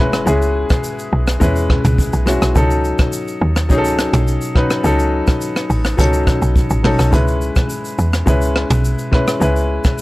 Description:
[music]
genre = afrobeats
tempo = 105 BPM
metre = 4/4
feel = straight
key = C# minor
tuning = A4 = 440 Hz
[part]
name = warm grand piano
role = accompaniment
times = 0.0-10.0 s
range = F#3 to B4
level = -18 LUFS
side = left 2 dB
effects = none
[part]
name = jazz brush drum kit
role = drums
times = 0.1-10.0 s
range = hi-hat, kick drum, rim click, shaker, toms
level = -17 LUFS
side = equal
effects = none
[part]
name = woody log drum bass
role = bass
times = 0.3-9.8 s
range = A1 to E2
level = -17 LUFS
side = equal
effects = none
[sound]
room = small room ambience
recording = dry, gritty hardware recording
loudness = -13 LUFS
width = side -19 dB against mid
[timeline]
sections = 0.0-10.0 A section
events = none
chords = 0.0 C#m7; 2.6 D#m7b5; 7.1 C#m7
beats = | 0.27 0.84 1.41 1.99 | 2.56 3.13 3.70 4.27 | 4.84 5.41 5.99 6.56 | 7.13 7.70 8.27 8.84 | 9.41 9.98

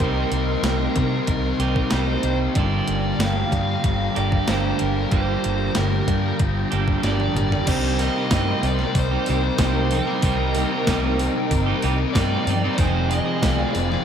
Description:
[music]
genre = rock, shoegaze and dream pop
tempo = 94 BPM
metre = 4/4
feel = straight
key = C minor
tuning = A4 = 436 Hz
[part]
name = dark smooth lead guitar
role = melody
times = 0.0-14.0 s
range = Bb4 to F5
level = -29 LUFS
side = right 2 dB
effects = overdrive, analog delay
[part]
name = soft string machine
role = sustained chords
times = 0.0-14.0 s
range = Eb4 to D6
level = -30 LUFS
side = equal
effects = phaser, ensemble chorus
[part]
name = direct-recorded clean electric guitar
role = arpeggios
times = 0.0-14.0 s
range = Eb3 to G4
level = -34 LUFS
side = right 6 dB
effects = none
[part]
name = overdriven electric guitar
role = riff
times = 0.0-14.0 s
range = F2 to Ab4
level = -27 LUFS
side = right 8 dB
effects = reverse reverb
[part]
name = thick fuzz guitar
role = riff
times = 0.0-14.0 s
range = F2 to C4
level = -26 LUFS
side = left 7 dB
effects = distortion, wide subtle chorus
[part]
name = vintage muted fingered electric bass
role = bass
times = 0.0-14.0 s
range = F1 to C3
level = -24 LUFS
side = equal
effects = none
[part]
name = clean 12-bit digital drum machine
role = drums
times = 0.0-14.0 s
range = crash cymbal, hi-hat, kick drum, snare drum, toms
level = -25 LUFS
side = equal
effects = none
[sound]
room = wet lush hall reverb, RT60 2.0 s, digital ambience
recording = dreamy mix soaked in reverb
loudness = -19 LUFS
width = side -8 dB against mid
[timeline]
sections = 0.0-7.7 A section; 7.7-14.0 B section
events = drum fill 7.0-7.7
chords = 0.0 Cm7; 2.6 Gm7; 7.7 Cm7; 12.8 Fm7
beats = | 0.00 0.64 1.28 1.92 | 2.56 3.20 3.84 4.48 | 5.12 5.76 6.40 7.04 | 7.68 8.32 8.96 9.60 | 10.24 10.88 11.51 12.15 | 12.79 13.43

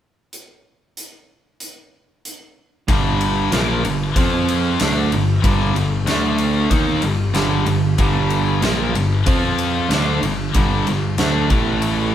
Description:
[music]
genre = hard rock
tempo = 94 BPM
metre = 4/4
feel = straight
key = G minor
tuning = A4 = 440 Hz
[part]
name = huge arena drum kit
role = drums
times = 0.3-12.0 s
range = hi-hat, kick drum, ride cymbal, snare drum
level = -22 LUFS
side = equal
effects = none
[part]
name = overdriven semi-hollow guitar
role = riff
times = 2.9-12.1 s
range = G2 to F4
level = -21 LUFS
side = right 5 dB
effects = none
[part]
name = scooped high-gain guitar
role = riff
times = 2.9-12.1 s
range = G2 to F4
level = -20 LUFS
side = left 4 dB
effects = distortion
[part]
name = modern bright picked electric bass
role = bass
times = 2.9-12.1 s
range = G1 to F2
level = -24 LUFS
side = equal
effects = none
[sound]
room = wet stone room reverb, RT60 1.1 s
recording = band playing live in one room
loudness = -16 LUFS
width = side -10 dB against mid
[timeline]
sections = 0.3-2.9 A section; 2.9-12.1 B section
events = none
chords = 0.3 N.C.; 2.9 Gm; 4.2 F5; 4.8 G5; 6.1 D5; 6.7 Gm; 9.3 F5; 9.9 G5; 11.5 A5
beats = | 0.33 0.96 1.60 2.24 | 2.88 3.52 4.16 4.80 | 5.44 6.08 6.72 7.36 | 8.00 8.64 9.28 9.92 | 10.56 11.20 11.84

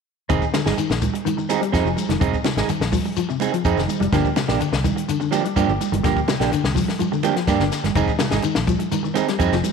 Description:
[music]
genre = afrobeat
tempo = 125 BPM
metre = 4/4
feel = straight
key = F dorian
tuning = A4 = 441 Hz
[part]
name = mellow electric guitar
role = arpeggios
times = 0.3-9.7 s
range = C3 to G3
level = -25 LUFS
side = left 10 dB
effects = analog chorus
[part]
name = electric guitar at the edge of break-up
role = stabs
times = 0.3-9.7 s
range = F3 to Ab4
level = -24 LUFS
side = right 9 dB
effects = wide subtle chorus
[part]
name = fingered electric bass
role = bass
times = 0.3-9.6 s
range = F1 to G2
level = -24 LUFS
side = equal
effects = none
[part]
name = compact cocktail drum kit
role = drums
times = 0.3-9.7 s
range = hi-hat, kick drum, snare drum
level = -25 LUFS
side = left 4 dB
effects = none
[part]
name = shekere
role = percussion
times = 0.3-9.7 s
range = none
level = -33 LUFS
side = left 6 dB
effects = none
[part]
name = congas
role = percussion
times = 0.5-9.7 s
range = none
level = -26 LUFS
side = right 12 dB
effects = none
[sound]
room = moderate echo chamber reverb, RT60 2.0 s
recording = 1960s-style stereo with parts hard left and right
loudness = -18 LUFS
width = side -6 dB against mid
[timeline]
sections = 0.3-9.7 A section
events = none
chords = 0.3 Fm7; 4.1 Gm7; 8.0 Fm7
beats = | 0.29 0.77 1.25 1.73 | 2.21 2.69 3.17 3.65 | 4.13 4.61 5.09 5.57 | 6.04 6.52 7.00 7.48 | 7.96 8.44 8.92 9.40

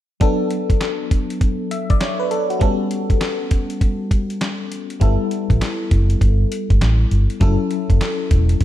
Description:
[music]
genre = R&B, new jack swing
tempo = 100 BPM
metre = 4/4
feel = swing 63% on 16ths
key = B minor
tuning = A4 = 444 Hz
[part]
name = FM electric piano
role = accompaniment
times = 0.2-8.6 s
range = F#3 to E5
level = -22 LUFS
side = left 2 dB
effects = chorus, phaser
[part]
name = dusty soul sampler-style drum kit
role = drums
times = 0.2-8.6 s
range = handclaps, hi-hat, kick drum, snare drum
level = -18 LUFS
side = equal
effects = none
[part]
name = vintage muted fingered electric bass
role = bass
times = 5.0-8.6 s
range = E1 to A1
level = -16 LUFS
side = equal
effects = none
[sound]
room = light reverb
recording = none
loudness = -16 LUFS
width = side -13 dB against mid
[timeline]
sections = 0.2-8.6 A section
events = none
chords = 0.2 Bm7; 2.6 A9; 5.0 G69; 7.4 F#m7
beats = | 0.21 0.81 1.41 2.01 | 2.61 3.21 3.81 4.41 | 5.01 5.61 6.21 6.81 | 7.41 8.01 8.61

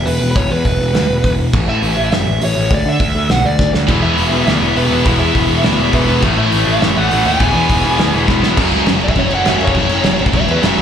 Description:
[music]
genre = punk rock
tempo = 204 BPM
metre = 4/4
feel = straight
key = F# minor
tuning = A4 = 440 Hz
[part]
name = dark smooth lead guitar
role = melody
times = 0.0-10.8 s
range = B4 to G#5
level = -19 LUFS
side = right 1 dB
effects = overdrive, slapback echo
[part]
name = fuzz picked electric bass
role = bass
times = 0.0-10.8 s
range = E1 to D3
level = -17 LUFS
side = equal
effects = overdrive
[part]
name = loose indie drum kit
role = drums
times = 0.1-10.8 s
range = crash cymbal, hi-hat, kick drum, snare drum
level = -18 LUFS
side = equal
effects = none
[part]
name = heavy high-gain guitar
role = riff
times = 3.9-10.8 s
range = F#2 to E4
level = -18 LUFS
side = equal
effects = distortion, slapback echo
[part]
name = overdriven electric guitar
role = riff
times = 3.9-10.8 s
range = E2 to A3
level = -20 LUFS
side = left 11 dB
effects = slapback echo
[part]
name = overdriven electric guitar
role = riff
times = 3.9-10.8 s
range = F#2 to E4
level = -22 LUFS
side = right 10 dB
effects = slapback echo
[sound]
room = little or no reverb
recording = live gig heard through the venue's PA, club reverb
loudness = -11 LUFS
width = side -8 dB against mid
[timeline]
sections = 0.0-8.6 A section; 8.6-10.8 B section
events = half time 0.0-8.6; drum fill 3.6, 8.3; lead electric guitar solo 8.6-10.8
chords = 0.0 E5; 1.5 A; 2.7 Bmadd11 (rootless); 3.9 E; 6.2 A; 7.4 E; 8.6 F#m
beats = 0.07 | 0.36 0.65 0.95 1.24 | 1.53 1.83 2.12 2.41 | 2.71 3.00 3.29 3.59 | 3.88 4.17 4.47 4.76 | 5.05 5.35 5.64 5.93 | 6.23 6.52 6.81 7.11 | 7.40 7.69 7.99 8.28 | 8.57 8.87 9.16 9.45 | 9.75 10.04 10.33 10.63

